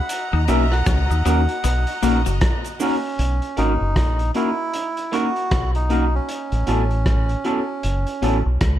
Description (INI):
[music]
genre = lovers rock reggae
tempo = 78 BPM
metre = 4/4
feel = swing 60% on 16ths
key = B major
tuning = A4 = 440 Hz
[part]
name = melodica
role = melody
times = 0.0-8.4 s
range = C#4 to F#5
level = -26 LUFS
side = right 2 dB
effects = tape echo
[part]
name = warm studio string section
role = second line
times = 0.0-3.2 s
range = F#4 to A#5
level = -31 LUFS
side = left 1 dB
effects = none
[part]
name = crunchy breakbeat drum kit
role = drums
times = 0.1-8.8 s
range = hi-hat, kick drum, rim click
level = -23 LUFS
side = equal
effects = gated reverb
[part]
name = cabasa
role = percussion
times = 0.1-3.0 s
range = none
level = -39 LUFS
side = right 6 dB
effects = none
[part]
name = twangy electric guitar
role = riff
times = 0.3-2.4 s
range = F#3 to D#4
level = -30 LUFS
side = left 10 dB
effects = dub echo
[part]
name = deep dub fingered electric bass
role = bass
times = 0.3-8.8 s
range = F#1 to D#2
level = -20 LUFS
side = equal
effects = none
[part]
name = mellow tine electric piano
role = accompaniment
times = 0.5-8.4 s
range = A#3 to F#4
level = -26 LUFS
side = left 2 dB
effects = medium stereo tremolo
[part]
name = electric guitar through a small old amp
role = stabs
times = 0.5-8.4 s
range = F#3 to A#4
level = -27 LUFS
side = right 3 dB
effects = harmonic tremolo
[sound]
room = little or no reverb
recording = none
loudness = -18 LUFS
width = side -12 dB against mid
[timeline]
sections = 0.0-3.2 A section; 3.2-8.8 B section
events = none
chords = 0.1 D#m7; 1.6 Bmaj7; 6.3 A6